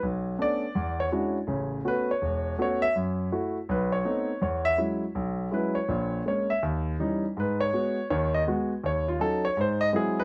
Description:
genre	solo jazz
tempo	164 BPM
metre	4/4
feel	swing 64% on 8ths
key	unclear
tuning	A4 = 440 Hz
part	warm grand piano	solo	0.0-10.2 s	E1 to E5	-28 LUFS	equal	none
room	light reverb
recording	none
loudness	-28 LUFS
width	mono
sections	0.0-10.2 A section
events	grand piano solo 0.0-10.2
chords	0.0 Bm9; 0.8 E13; 1.5 A69; 3.0 F#m7; 3.7 B7b9; 4.4 E69; 5.9 A#m7b5; 6.6 D#7b9; 7.4 G#m7; 8.8 D#m9b5; 9.6 G#7b13

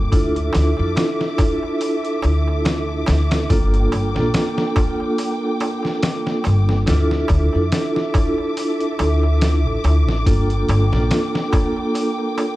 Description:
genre	trip hop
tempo	71 BPM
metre	4/4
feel	swing 55% on 16ths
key	D minor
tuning	A4 = 441 Hz
part	vibraphone with medium mallets	accompaniment	0.0-12.6 s	Bb3 to A4	-21 LUFS	right 1 dB	tremolo, tape echo
part	dark studio string section	sustained chords	0.0-12.6 s	Bb3 to D6	-28 LUFS	equal	none
part	upright bass	bass	0.0-11.1 s	G1 to F2	-17 LUFS	equal	tube saturation
part	trip hop sampler-style drum kit	drums	0.1-12.6 s	hi-hat, kick drum, snare drum	-21 LUFS	equal	vintage 12-bit sampler grit, studio reverb
part	darbuka	percussion	0.1-12.6 s	none	-32 LUFS	right 2 dB	none
room	little or no reverb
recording	dark, warm production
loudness	-16 LUFS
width	side -17 dB against mid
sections	0.0-12.6 A section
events	none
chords	0.1 Dmadd9; 3.5 Gm7; 6.9 Dmadd9; 10.3 Gm7

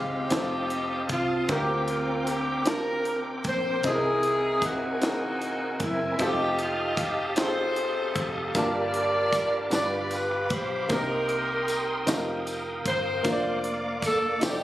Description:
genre	slow gospel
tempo	51 BPM (dotted quarters)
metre	6/8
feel	straight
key	Bb major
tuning	A4 = 440 Hz
part	clear saxophone section	melody	0.0-14.6 s	Bb3 to D5	-27 LUFS	equal	slapback echo
part	clear upright piano	accompaniment	0.0-14.6 s	G2 to A5	-31 LUFS	left 1 dB	none
part	bright tonewheel organ	sustained chords	0.0-14.6 s	Bb3 to Eb6	-32 LUFS	right 2 dB	slow rotary speaker, overdrive, chorus vibrato
part	hollow-body short-scale fingered electric bass	bass	0.0-14.6 s	F1 to D2	-38 LUFS	equal	none
part	crisp fusion drum kit	drums	0.3-14.6 s	hi-hat, kick drum, snare drum	-31 LUFS	equal	none
part	tambourine	percussion	8.6-14.6 s	none	-39 LUFS	equal	none
room	light reverb, small room ambience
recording	recorded on a phone in the room, studio reverb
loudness	-24 LUFS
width	side -14 dB against mid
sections	0.0-14.6 A section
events	none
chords	0.3 F7; 1.5 Bb69/D; 3.8 C7alt; 6.2 F9; 8.5 Gm9; 9.7 G7; 10.9 Cm7; 12.1 F9sus4; 13.2 Bb/F

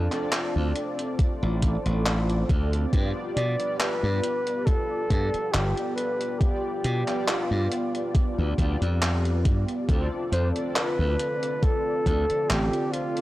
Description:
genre	vaporwave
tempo	69 BPM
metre	4/4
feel	swing 53% on 16ths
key	D dorian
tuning	A4 = 437 Hz
part	breathy flugelhorn	melody	0.0-13.2 s	D4 to D5	-29 LUFS	equal	tape echo
part	mellow synth brass	accompaniment	0.0-13.2 s	B3 to D5	-31 LUFS	equal	analog chorus, analog delay
part	glassy slap bass	bass	0.0-12.7 s	G1 to B2	-25 LUFS	equal	none
part	gated 80s digital drum machine	drums	0.1-13.2 s	handclaps, hi-hat	-30 LUFS	equal	gated reverb, overdrive, vintage 12-bit sampler grit
part	electronic kick drum	drums	1.2-12.2 s	none	-23 LUFS	equal	overdrive, vintage 12-bit sampler grit
part	warbly tape-like pad	sustained chords	10.3-13.2 s	D3 to F4	-34 LUFS	right 1 dB	chorus, built-in reverb
room	light reverb, digital ambience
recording	dry, gritty hardware recording, transformer saturation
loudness	-23 LUFS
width	side -16 dB against mid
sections	0.0-13.2 A section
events	none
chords	0.0 Dm7; 2.9 G7; 9.9 Dm7

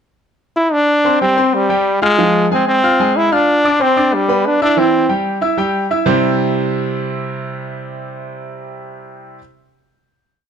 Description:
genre	latin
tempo	185 BPM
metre	4/4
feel	straight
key	C major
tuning	A4 = 440 Hz
part	brilliant trombone	melody	0.6-5.1 s	G3 to E4	-13 LUFS	equal	none
part	clear grand piano	accompaniment	1.0-9.4 s	C3 to F6	-16 LUFS	right 1 dB	none
room	light reverb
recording	close, detailed microphones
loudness	-12 LUFS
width	side -7 dB against mid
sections	0.0-0.9 pickup bar; 0.9-6.1 A section; 6.1-8.7 final chord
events	none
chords	0.0 N.C.; 0.9 Csus2; 2.2 Fm; 3.5 Csus24; 4.1 G; 4.8 C

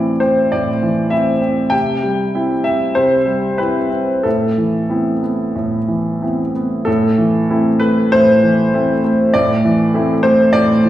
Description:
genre	neoclassical minimalist piano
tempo	89-101 BPM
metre	4/4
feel	rubato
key	A minor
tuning	A4 = 443 Hz
part	clear concert grand piano	solo	0.0-10.9 s	A2 to G5	-13 LUFS	equal	none
room	wet recital hall reverb, RT60 1.6 s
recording	recorded in a church or concert hall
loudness	-13 LUFS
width	side -13 dB against mid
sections	0.0-6.9 A section; 6.9-10.9 B section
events	none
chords	0.0 Am; 1.7 C; 4.2 Amadd9; 6.9 Am

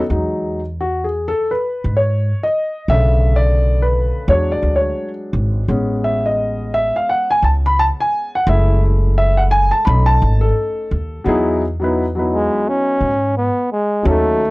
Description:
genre	hip hop, jazz-hop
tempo	86 BPM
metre	4/4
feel	swing 60% on 16ths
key	E major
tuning	A4 = 440 Hz
part	breathy flugelhorn	melody	0.0-0.1, 12.3-14.5 s	G#3 to C#4	-16 LUFS	equal	none
part	upright bass	bass	0.0-14.5 s	F#1 to G#2	-17 LUFS	equal	transformer saturation
part	dark concert grand piano	accompaniment	0.1-14.4 s	C#3 to B5	-17 LUFS	equal	none
room	little or no reverb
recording	dry, gritty hardware recording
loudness	-14 LUFS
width	side -22 dB against mid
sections	0.1-11.3 A section; 11.3-14.5 B section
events	grand piano solo 0.1-11.3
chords	0.1 Emaj7; 2.9 Bm7; 4.3 E7; 5.7 Amaj7; 8.5 F#m7; 9.9 B7; 11.3 Emaj7

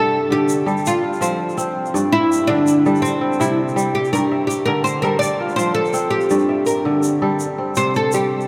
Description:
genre	west african traditional, West African string and xylophone music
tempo	110 BPM (dotted quarters)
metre	12/8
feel	straight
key	G dorian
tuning	A4 = 440 Hz
part	oud	melody	0.0-8.3 s	C4 to D5	-21 LUFS	equal	none
part	kora	arpeggios	0.0-8.5 s	G2 to E5	-22 LUFS	equal	none
part	egg shaker	percussion	0.5-8.4 s	none	-33 LUFS	equal	none
room	wet cathedral reverb, RT60 5.3 s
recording	in a vast, echoing space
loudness	-18 LUFS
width	mono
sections	0.0-8.5 A section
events	oud solo 0.0-8.5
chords	0.0 G5; 0.9 F; 1.9 G5; 3.0 C5; 4.1 Gm; 5.2 F; 6.3 G5; 7.4 C5

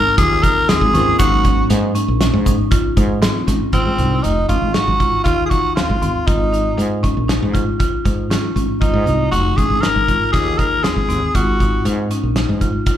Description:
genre	progressive instrumental, band music in an uneven meter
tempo	118 BPM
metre	5/4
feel	straight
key	Ab mixolydian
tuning	A4 = 437 Hz
part	raspy tenor saxophone	melody	0.0-11.9 s	C4 to Bb4	-18 LUFS	equal	slapback echo
part	archtop guitar, miked and amplified	accompaniment	0.0-3.7 s	Gb3 to F5	-26 LUFS	equal	slapback echo
part	marimba with medium hard mallets	arpeggios	0.0-13.0 s	C4 to F4	-22 LUFS	left 2 dB	slapback echo, digital delay
part	woody fretless electric bass	bass	0.2-12.7 s	F1 to Ab2	-18 LUFS	equal	none
part	loose indie drum kit	drums	0.2-13.0 s	hi-hat, kick drum, snare drum	-19 LUFS	equal	none
part	egg shaker	percussion	0.4-3.6 s	none	-38 LUFS	left 2 dB	none
room	small room ambience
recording	live gig heard through the venue's PA, club reverb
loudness	-14 LUFS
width	side -11 dB against mid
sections	0.0-3.7 A section; 3.7-13.0 B section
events	none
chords	0.0 Abadd9; 1.2 Ebm7/Ab; 3.7 Ab; 6.3 Eb5/Ab; 8.8 Abadd9; 11.3 Ebm/Ab

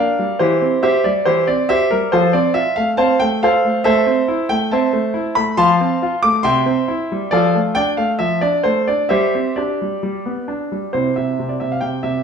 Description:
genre	classical-period piano sonatina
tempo	137 BPM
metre	4/4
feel	rubato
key	F major, C major from 3.8 s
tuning	A4 = 439 Hz
part	clear concert grand piano	solo	0.0-12.2 s	C3 to D6	-15 LUFS	equal	none
room	wet stone room reverb, RT60 1.0 s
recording	small room ambience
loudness	-15 LUFS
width	side -6 dB against mid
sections	0.0-10.9 A section; 10.9-12.2 B section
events	none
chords	0.4 C/E; 2.1 F; 3.8 Am; 5.6 F; 6.4 C; 7.3 Dm/F; 9.1 Gsus4; 10.0 G; 10.9 C

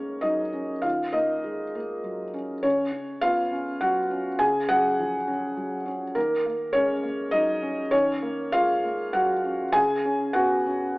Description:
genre	neoclassical minimalist piano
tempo	101 BPM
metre	3/4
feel	uneven beats, rubato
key	Eb minor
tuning	A4 = 443 Hz
part	felt-muted upright piano	solo	0.0-11.0 s	Db3 to Ab5	-23 LUFS	equal	none
room	moderate recital hall reverb, RT60 1.5 s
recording	recorded in a church or concert hall, telephone sound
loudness	-23 LUFS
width	side -23 dB against mid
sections	0.0-11.0 A section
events	none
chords	0.0 Ebm7; 2.6 Dbsus4; 6.2 Ebm7; 9.7 Dbsus4

